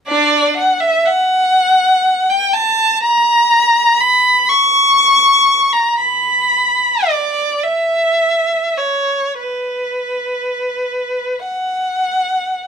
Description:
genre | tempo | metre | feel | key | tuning
classical, free, expressive piece for unaccompanied violin | 25-42 BPM (dotted quarters) | 6/8 | rubato | B minor | A4 = 443 Hz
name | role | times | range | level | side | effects
rich violin | solo | 0.1-12.7 s | D4 to C#6 | -12 LUFS | equal | none
room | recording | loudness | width
light reverb | close, detailed microphones | -12 LUFS | side -7 dB against mid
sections
0.0-12.7 A section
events
none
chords
none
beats
| 0.07 1.55 | 3.02 4.48 | 5.99 7.64 | 9.39 11.44

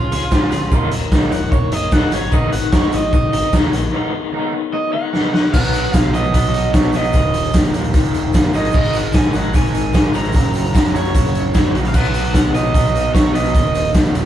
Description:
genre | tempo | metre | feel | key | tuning
indie rock | 150 BPM | 4/4 | straight | unclear | A4 = 440 Hz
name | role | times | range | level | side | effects
overdriven electric guitar | melody | 0.0-13.9 s | F4 to Bb5 | -22 LUFS | right 3 dB | none
electric guitar through a small old amp | riff | 0.0-14.3 s | Eb2 to Ab4 | -24 LUFS | left 7 dB | tremolo
growling picked electric bass | bass | 0.0-14.3 s | Eb1 to Ab2 | -24 LUFS | equal | overdrive
raw garage guitar | riff | 0.1-14.3 s | Eb2 to Ab4 | -24 LUFS | right 5 dB | overdrive
raw garage drum kit | drums | 0.1-14.2 s | crash cymbal, hi-hat, kick drum, snare drum | -16 LUFS | equal | none
tube shaker | percussion | 0.1-14.2 s | none | -41 LUFS | right 6 dB | none
room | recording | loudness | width
moderate large studio reverb, RT60 1.0 s | band playing live in one room | -14 LUFS | side -11 dB against mid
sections
0.0-5.5 A section; 5.5-14.3 B section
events
overdriven electric guitar solo 0.0-5.5; break 3.9-5.5; drum fill 5.1-5.5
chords
0.0 Db; 0.7 Ebm; 2.1 Abm7; 5.5 B; 7.1 Eb5; 8.5 Ab5; 10.3 Gb; 11.9 B; 13.5 Eb5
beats
0.32 | 0.72 1.12 1.53 1.93 | 2.33 2.73 3.13 3.53 | 3.93 4.33 4.74 5.14 | 5.54 5.94 6.34 6.74 | 7.14 7.54 7.94 8.34 | 8.74 9.14 9.54 9.94 | 10.35 10.74 11.14 11.54 | 11.94 12.34 12.74 13.14 | 13.54 13.94

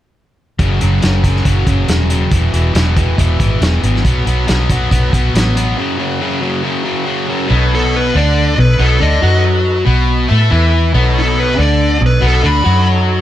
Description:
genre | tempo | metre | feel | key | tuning
blues rock power trio and southern rock | 139 BPM | 4/4 | straight | unclear | A4 = 440 Hz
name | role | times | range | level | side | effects
crunchy overdriven guitar | riff | 0.6-13.2 s | E2 to A4 | -16 LUFS | left 1 dB | none
vintage muted fingered electric bass | bass | 0.6-13.2 s | E1 to A2 | -13 LUFS | equal | none
vintage drum kit | drums | 0.6-5.7 s | hi-hat, kick drum, snare drum | -16 LUFS | equal | none
tonewheel organ | sustained chords | 7.5-13.2 s | D#4 to C#5 | -25 LUFS | right 2 dB | slow rotary speaker, overdrive
smooth overdriven lead guitar | melody | 7.7-12.9 s | A4 to B5 | -17 LUFS | equal | analog delay
room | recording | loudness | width
light reverb | none | -11 LUFS | side -12 dB against mid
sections
0.6-7.5 A section; 7.5-13.2 B section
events
break 5.8-7.5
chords
0.6 F#5; 2.3 E; 4.1 B5; 5.8 F#5; 7.5 B7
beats
| 0.60 1.03 1.46 1.90 | 2.33 2.76 3.19 3.62 | 4.06 4.49 4.92 5.35 | 5.78 6.21 6.64 7.08 | 7.51 7.94 8.37 8.79 | 9.22 9.65 10.08 10.51 | 10.94 11.37 11.79 12.22 | 12.65 13.08

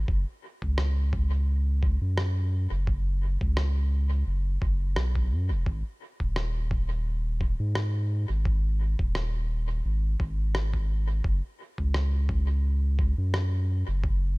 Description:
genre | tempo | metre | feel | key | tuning
ambient dub | 86 BPM | 4/4 | swing 54% on 16ths | unclear | A4 = 440 Hz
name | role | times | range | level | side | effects
warm sub bass | bass | 0.0-14.4 s | D#1 to G#2 | -25 LUFS | equal | none
electronic kick drum | drums | 0.1-14.2 s | none | -29 LUFS | equal | none
electronic rim click | drums | 0.8-13.5 s | none | -36 LUFS | equal | dub echo
room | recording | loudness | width
little or no reverb | none | -25 LUFS | side -25 dB against mid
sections
0.0-14.4 A section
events
none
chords
none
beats
| 0.08 0.78 1.48 2.17 | 2.87 3.57 4.27 4.97 | 5.66 6.36 7.06 7.76 | 8.45 9.15 9.85 10.55 | 11.24 11.94 12.64 13.34 | 14.04

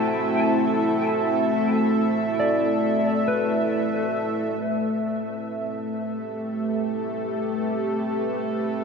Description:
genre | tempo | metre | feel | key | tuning
ambient | free time | none | none | A dorian | A4 = 440 Hz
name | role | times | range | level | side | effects
warm analog pad | sustained chords | 0.0-8.8 s | A3 to E5 | -23 LUFS | equal | chorus
mellow electric guitar | arpeggios | 0.0-5.4 s | B4 to A5 | -29 LUFS | right 1 dB | diffuse ambient delay
bowed-like drone | drone | 0.0-8.8 s | A3 to A4 | -30 LUFS | left 1 dB | built-in reverb
room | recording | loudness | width
wet huge ambient reverb, RT60 7.3 s | none | -22 LUFS | side -5 dB against mid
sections
0.0-4.6 A section; 4.6-8.8 B section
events
none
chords
0.0 Dadd9; 4.6 Am9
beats
free time

